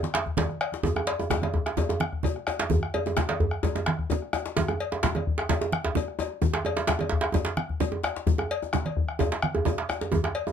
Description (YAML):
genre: west african traditional, West African drum ensemble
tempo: 129 BPM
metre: 4/4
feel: straight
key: none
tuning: none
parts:
  - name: bombo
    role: percussion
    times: 0.0-10.5 s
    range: none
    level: -30 LUFS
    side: left 3 dB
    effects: none
  - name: congas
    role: percussion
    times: 0.0-10.3 s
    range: none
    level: -31 LUFS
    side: right 6 dB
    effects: none
  - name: djembe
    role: percussion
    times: 0.0-10.5 s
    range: none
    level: -30 LUFS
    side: left 5 dB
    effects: none
  - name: djembe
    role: percussion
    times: 0.1-10.5 s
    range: none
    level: -28 LUFS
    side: right 4 dB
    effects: none
  - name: cowbell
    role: percussion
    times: 0.4-10.5 s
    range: none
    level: -34 LUFS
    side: left 6 dB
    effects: none
room: light reverb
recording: none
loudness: -25 LUFS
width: side -8 dB against mid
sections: 0.8-10.5 A section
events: drum fill 0.0-0.8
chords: none